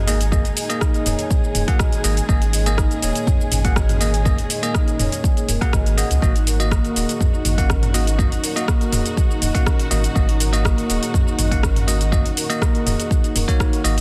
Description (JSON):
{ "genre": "afro house", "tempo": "122 BPM", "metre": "4/4", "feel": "straight", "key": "unclear", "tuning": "A4 = 439 Hz", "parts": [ { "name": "dark studio string section", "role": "sustained chords", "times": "0.0-14.0 s", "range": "A#2 to G#4", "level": "-31 LUFS", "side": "equal", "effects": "sidechain pumping" }, { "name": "warm sub bass", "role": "bass", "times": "0.0-14.0 s", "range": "D#1 to C#2", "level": "-23 LUFS", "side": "equal", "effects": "sidechain pumping" }, { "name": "bell-like tine electric piano", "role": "stabs", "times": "0.1-14.0 s", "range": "A#3 to F#5", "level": "-29 LUFS", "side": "equal", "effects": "vintage 12-bit sampler grit, sidechain pumping, digital delay" }, { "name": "deep house drum kit", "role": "drums", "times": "0.1-14.0 s", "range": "hi-hat, rim click, shaker, toms", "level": "-27 LUFS", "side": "equal", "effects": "soft clipping on snare, small room ambience" }, { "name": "marimba with medium mallets", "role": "arpeggios", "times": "0.2-14.0 s", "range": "A#3 to G#5", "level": "-31 LUFS", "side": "equal", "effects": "sidechain pumping, digital delay" }, { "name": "electronic kick drum", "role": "drums", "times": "0.3-13.7 s", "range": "none", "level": "-21 LUFS", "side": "equal", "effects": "small room ambience" } ], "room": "digital ambience", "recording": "dense, heavily limited modern master", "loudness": "-19 LUFS", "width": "mono", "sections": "0.0-14.0 A section", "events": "none", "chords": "0.0 D#m" }